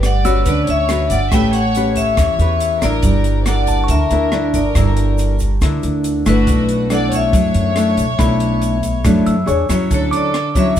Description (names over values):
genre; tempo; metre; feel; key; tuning
bossa nova; 140 BPM; 4/4; straight; unclear; A4 = 439 Hz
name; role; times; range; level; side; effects
vibraphone with medium hard mallets; melody; 0.0-10.8 s; B4 to G5; -21 LUFS; left 3 dB; none
warm studio violin section; second line; 0.0-10.8 s; F#4 to E5; -25 LUFS; right 2 dB; none
nylon-string guitar; accompaniment; 0.0-10.8 s; A2 to C#5; -18 LUFS; left 1 dB; none
upright bass; bass; 0.0-10.8 s; G1 to F#2; -18 LUFS; right 1 dB; none
compact cocktail drum kit; drums; 0.0-10.8 s; hi-hat, kick drum, rim click; -20 LUFS; equal; none
tube shaker; percussion; 0.0-10.8 s; none; -34 LUFS; right 6 dB; none
bell-like tine electric piano; accompaniment; 0.2-10.8 s; A5 to E6; -26 LUFS; right 3 dB; none
room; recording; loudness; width
moderate studio reverb, RT60 0.8 s; heard from further back in the room; -13 LUFS; side -10 dB against mid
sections
0.0-9.9 A section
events
none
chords
0.0 Gmaj7#11; 1.3 A9; 3.0 Gm6; 6.5 Bm11; 9.5 E13; 9.9 Dmaj9